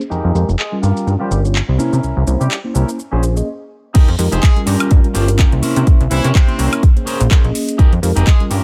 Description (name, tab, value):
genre	filtered disco house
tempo	125 BPM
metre	4/4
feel	swing 56% on 16ths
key	F minor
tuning	A4 = 440 Hz
part	clean electric guitar	riff	0.0-8.6 s	Db4 to Db5	-26 LUFS	equal	vintage 12-bit sampler grit, sidechain pumping, low-pass filter
part	house drum kit	drums	0.0-8.6 s	crash cymbal, handclaps, hi-hat, shaker, woodblock	-26 LUFS	equal	sidechain pumping on hats, low-pass filter on hats, studio reverb, sidechain pumping on perc, low-pass filter on perc, low-pass filter on snare, sidechain pumping on cymbals, low-pass filter on cymbals
part	plucky analog bass	bass	0.1-8.6 s	F1 to C3	-18 LUFS	equal	tube saturation, sidechain pumping, low-pass filter
part	mellow tine electric piano	accompaniment	0.3-8.6 s	G3 to C6	-24 LUFS	equal	phaser, sidechain pumping, low-pass filter
part	brilliant horn section	melody	0.6-8.4 s	C3 to Ab4	-29 LUFS	equal	sidechain pumping, low-pass filter
part	electronic kick drum	drums	4.0-8.4 s	none	-12 LUFS	equal	studio reverb
room	little or no reverb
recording	none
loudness	-14 LUFS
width	mono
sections	0.0-4.0 A section; 4.0-8.6 B section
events	filter sweep 0.0-4.0; stop 3.5-4.0; drop 4.0-8.6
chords	0.1 Fm11; 0.8 Gm7b5; 1.8 C7b9; 3.0 Bbm9; 4.0 Fm11; 4.7 Gm7b5; 5.6 C7b9; 6.8 Bbm9; 7.8 Fm11